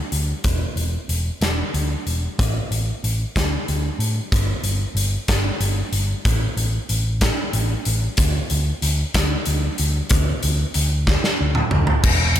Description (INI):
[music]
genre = quiet-loud alternative rock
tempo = 62 BPM (dotted quarters)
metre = 6/8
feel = straight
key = unclear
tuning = A4 = 440 Hz
[part]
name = hollow-body short-scale picked electric bass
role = bass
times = 0.1-12.4 s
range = E1 to A2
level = -21 LUFS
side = equal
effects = none
[part]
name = big rock drum kit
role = drums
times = 0.1-12.4 s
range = crash cymbal, hi-hat, kick drum, ride cymbal, snare drum, toms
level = -21 LUFS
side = equal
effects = none
[sound]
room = little or no reverb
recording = none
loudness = -18 LUFS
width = side -11 dB against mid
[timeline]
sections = 0.0-4.3 A section; 4.3-12.0 B section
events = drum fill 11.1-12.0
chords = none